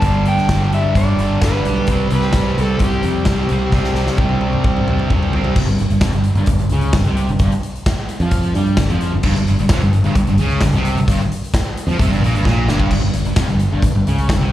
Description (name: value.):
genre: classic rock.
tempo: 131 BPM.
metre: 4/4.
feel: straight.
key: unclear.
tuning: A4 = 437 Hz.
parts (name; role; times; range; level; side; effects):
electric slide guitar; melody; 0.0-1.4 s; D5 to A5; -23 LUFS; equal; slapback echo, tape echo.
distorted electric guitar; riff; 0.0-14.5 s; F2 to C4; -22 LUFS; equal; distortion, slapback echo.
thick fuzz guitar; riff; 0.0-5.6, 9.2-12.9 s; F2 to C4; -21 LUFS; equal; distortion, slapback echo.
modern bright fingered electric bass; bass; 0.0-14.5 s; F1 to G2; -18 LUFS; equal; none.
huge arena drum kit; drums; 0.0-14.4 s; crash cymbal, hi-hat, kick drum, snare drum, toms; -19 LUFS; equal; none.
overdriven semi-hollow guitar; second line; 1.4-4.2 s; G4 to B4; -24 LUFS; right 1 dB; slapback echo.
room: small room ambience.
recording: live gig heard through the venue's PA, club reverb.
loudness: -14 LUFS.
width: side -13 dB against mid.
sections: 0.0-5.6 A section; 5.6-12.9 B section; 12.9-14.5 B section.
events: drum fill 3.7-5.6, 12.5-12.9.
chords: 0.0 G; 1.9 C5; 5.6 Fsus24; 12.9 Fsus2.